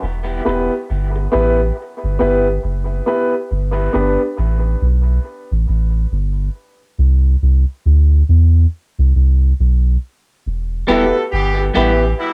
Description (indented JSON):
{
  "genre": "reggae",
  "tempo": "69 BPM",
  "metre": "4/4",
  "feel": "swing 61% on 16ths",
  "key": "E minor",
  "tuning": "A4 = 440 Hz",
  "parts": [
    { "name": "soft dub sub bass", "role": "bass", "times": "0.0-12.1 s", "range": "E1 to E2", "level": "-16 LUFS", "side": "equal", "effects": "transformer saturation" },
    { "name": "dark upright piano", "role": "stabs", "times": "0.5-4.2, 10.9-12.0 s", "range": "B3 to B4", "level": "-20 LUFS", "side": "equal", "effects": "cassette tape, tape echo" },
    { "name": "clear horn section", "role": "second line", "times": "10.9-12.3 s", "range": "B2 to A4", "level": "-22 LUFS", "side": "equal", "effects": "cassette tape, tape echo" },
    { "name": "semi-hollow electric guitar", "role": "accompaniment", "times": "10.9-11.9 s", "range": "G3 to G4", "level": "-24 LUFS", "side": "equal", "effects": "cassette tape, tape echo" }
  ],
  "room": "light reverb, small room ambience",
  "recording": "home recording on cassette",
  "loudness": "-16 LUFS",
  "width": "mono",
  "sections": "0.0-12.3 A section",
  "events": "break 0.0-10.4",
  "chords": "0.0 Em; 3.5 G; 7.0 C; 10.4 Em",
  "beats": "| 0.01 0.88 1.75 2.62 | 3.49 4.36 5.23 6.10 | 6.97 7.84 8.71 9.57 | 10.44 11.31 12.18"
}